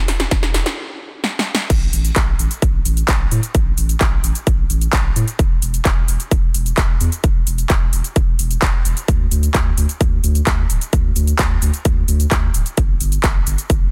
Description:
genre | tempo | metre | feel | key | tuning
EDM, festival progressive house | 130 BPM | 4/4 | straight | E minor | A4 = 441 Hz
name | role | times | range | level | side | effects
saturated sub bass | bass | 0.0-13.9 s | D1 to A2 | -21 LUFS | equal | sidechain pumping
big-room dance drum kit | drums | 0.1-13.8 s | crash cymbal, handclaps, hi-hat, shaker, snare drum | -24 LUFS | equal | none
electronic kick drum | drums | 0.3-13.8 s | none | -19 LUFS | equal | overdrive
room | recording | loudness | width
little or no reverb | dense, heavily limited modern master | -17 LUFS | mono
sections
0.0-1.7 A section; 1.7-13.9 B section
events
build-up 0.0-1.7; drum fill 0.0-0.8, 1.2-1.7; stop 0.8-1.7; drop 1.7-13.9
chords
none

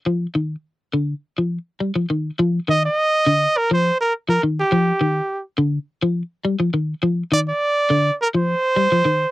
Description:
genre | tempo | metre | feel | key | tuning
afrobeat | 103 BPM | 4/4 | straight | unclear | A4 = 436 Hz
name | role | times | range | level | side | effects
electric guitar at the edge of break-up | arpeggios | 0.1-9.2 s | D3 to G3 | -19 LUFS | left 1 dB | analog chorus
bright trumpet | melody | 2.7-9.3 s | G4 to Eb5 | -18 LUFS | right 2 dB | none
room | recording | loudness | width
light reverb | dry, close 1970s-style studio recording | -18 LUFS | side -17 dB against mid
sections
0.0-2.4 A section; 2.4-9.3 B section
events
none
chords
0.0 Ebmaj7sus2/D

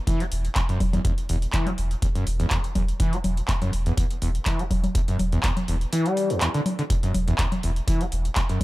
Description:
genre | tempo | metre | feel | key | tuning
acid house | 123 BPM | 4/4 | swing 54% on 16ths | E minor | A4 = 438 Hz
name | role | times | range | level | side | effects
overdriven acid bass | riff | 0.1-8.6 s | E2 to G3 | -27 LUFS | equal | lush chorus, sidechain pumping, digital delay
booming analog drum machine | drums | 0.1-8.6 s | congas, handclaps, hi-hat | -28 LUFS | equal | none
electronic kick drum | drums | 0.1-8.6 s | none | -25 LUFS | equal | none
warm sub bass | bass | 0.3-8.6 s | E1 | -26 LUFS | equal | sidechain pumping
room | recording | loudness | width
little or no reverb | none | -22 LUFS | side -18 dB against mid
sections
0.0-8.6 A section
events
kick drops out 5.9-6.9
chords
none

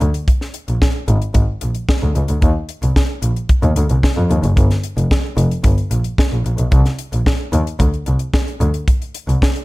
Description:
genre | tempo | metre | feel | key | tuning
disco | 112 BPM | 4/4 | straight | unclear | A4 = 442 Hz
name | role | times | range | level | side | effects
rich double bass | bass | 0.0-9.4 s | F1 to F2 | -16 LUFS | equal | none
tight funk drum kit | drums | 0.0-9.6 s | hi-hat, kick drum, snare drum | -16 LUFS | equal | none
room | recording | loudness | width
little or no reverb | none | -14 LUFS | side -20 dB against mid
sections
0.0-9.6 A section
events
none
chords
none

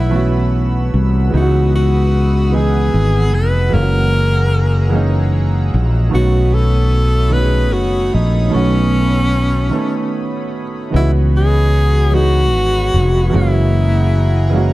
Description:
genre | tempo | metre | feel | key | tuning
R&B | 50 BPM (dotted quarters) | 6/8 | straight | C# minor | A4 = 440 Hz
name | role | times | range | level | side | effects
breathy tenor saxophone | melody | 0.0-14.7 s | C#4 to B4 | -20 LUFS | left 1 dB | none
warm concert grand piano | accompaniment | 0.0-14.7 s | D#3 to D#5 | -20 LUFS | right 3 dB | none
chorused pulse-width pad | sustained chords | 0.0-14.7 s | A3 to E6 | -28 LUFS | equal | none
fretless electric bass | bass | 0.0-14.7 s | E#1 to C#2 | -13 LUFS | equal | lush chorus
room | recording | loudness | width
small room reverb | dark, warm production | -12 LUFS | side -17 dB against mid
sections
0.0-10.9 A section; 10.9-14.7 A section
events
break 9.7-10.9; grand piano fill 14.5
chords
0.0 B9sus4; 1.3 C#m11; 3.7 F#9; 6.1 B9; 10.9 C#m11; 13.3 F#9

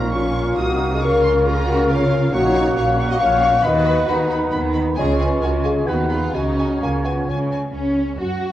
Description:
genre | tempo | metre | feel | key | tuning
quick classical-period movement for symphony orchestra | 135 BPM | 3/4 | rubato | F# major | A4 = 444 Hz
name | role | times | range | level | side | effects
rich studio violin section | melody | 0.0-8.5 s | C#4 to Eb6 | -31 LUFS | left 1 dB | none
clear oboe | second line | 0.0-7.5 s | F5 to G#5 | -31 LUFS | right 1 dB | none
dark clarinet | second line | 0.0-7.5 s | Db4 to E#4 | -28 LUFS | equal | none
mellow large flute ensemble | second line | 0.0-7.5 s | B5 to Db6 | -31 LUFS | right 1 dB | none
rich studio violin section | second line | 0.0-8.5 s | C4 to D#5 | -30 LUFS | left 2 dB | none
dark studio viola section | accompaniment | 0.0-8.5 s | Bb3 to F#4 | -28 LUFS | right 1 dB | none
warm bassoon | accompaniment | 0.0-7.7 s | G#3 to C#4 | -27 LUFS | right 1 dB | none
mellow French horn section | sustained chords | 0.0-7.5 s | Eb4 to E#5 | -20 LUFS | left 3 dB | none
warm studio cello section | bass | 0.0-8.5 s | Bb2 to F#4 | -24 LUFS | right 1 dB | none
warm studio double bass section | bass | 0.0-8.5 s | Bb1 to F#2 | -24 LUFS | right 2 dB | none
room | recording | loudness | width
wet recital hall reverb, RT60 1.6 s | worn, warbling old tape, cassette tape, warbly pitch drift | -16 LUFS | side -13 dB against mid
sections
0.0-7.7 A section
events
none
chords
0.0 Bbm; 1.0 Bbm/Db; 2.3 F#/A#; 3.6 B/D#; 5.0 C#; 5.9 B/D#; 6.3 C#; 7.7 F#5/C#

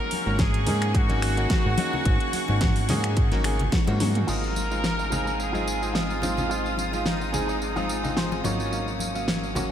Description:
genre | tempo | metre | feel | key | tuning
nu-disco, nu disco | 108 BPM | 4/4 | swing 54% on 16ths | unclear | A4 = 440 Hz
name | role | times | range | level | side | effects
clear trumpet section | melody | 0.0-8.4 s | Eb4 to Bb4 | -31 LUFS | equal | ping-pong delay
clear electric grand piano | accompaniment | 0.0-9.7 s | Gb3 to F5 | -30 LUFS | equal | ping-pong delay
clear studio string section | sustained chords | 0.0-9.7 s | Ab4 to Eb6 | -34 LUFS | left 1 dB | sidechain pumping
pop drum kit | drums | 0.1-9.7 s | crash cymbal, finger snaps, hi-hat, snare drum, tambourine, toms | -30 LUFS | equal | none
congas | percussion | 0.1-9.7 s | none | -34 LUFS | left 3 dB | none
fat analog bass | bass | 0.3-9.7 s | Ab1 to Ab2 | -28 LUFS | equal | none
electronic kick drum | drums | 0.4-3.8 s | none | -24 LUFS | equal | none
electric guitar with an envelope filter | riff | 4.3-9.6 s | Eb4 to Eb5 | -36 LUFS | right 1 dB | lush chorus, vintage 12-bit sampler grit, low-pass filter, ping-pong delay
room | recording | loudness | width
moderate cathedral reverb, RT60 5.4 s | dreamy mix soaked in reverb | -22 LUFS | side -10 dB against mid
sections
0.0-4.3 A section; 4.3-9.7 B section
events
drum fill 3.7-4.3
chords
0.0 Ab7sus4; 4.3 Fm7/Ab; 8.4 Ebm7/Ab

